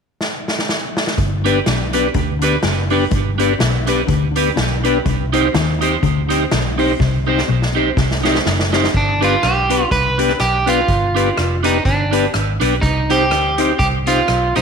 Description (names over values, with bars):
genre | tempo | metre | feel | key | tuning
ska | 124 BPM | 4/4 | swing 57% on 8ths | unclear | A4 = 440 Hz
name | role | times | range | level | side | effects
street-band drum kit | drums | 0.2-14.6 s | hi-hat, kick drum, rim click, snare drum | -21 LUFS | equal | none
mellow electric guitar | riff | 1.2-8.6 s | F#2 to Eb3 | -24 LUFS | left 8 dB | spring reverb, tape echo
vintage muted fingered electric bass | bass | 1.2-14.6 s | F1 to Eb2 | -20 LUFS | right 1 dB | none
electric guitar at the edge of break-up | accompaniment | 1.4-14.6 s | D4 to C5 | -20 LUFS | right 10 dB | wide subtle chorus, tape echo
percussive tonewheel organ | stabs | 1.4-14.6 s | B3 to C5 | -21 LUFS | left 10 dB | slow rotary speaker
electric guitar at the edge of break-up | melody | 9.0-14.6 s | D4 to B4 | -17 LUFS | right 2 dB | spring reverb
room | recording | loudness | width
moderate echo chamber reverb, RT60 1.2 s, small room ambience | 1960s-style stereo with parts hard left and right | -14 LUFS | side -6 dB against mid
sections
0.0-1.2 A section; 1.2-8.9 B section; 8.9-14.6 C section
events
drum fill 0.2-1.2, 7.0-8.9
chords
0.0 N.C.; 1.2 G; 5.1 Cm; 8.9 G; 12.8 Cm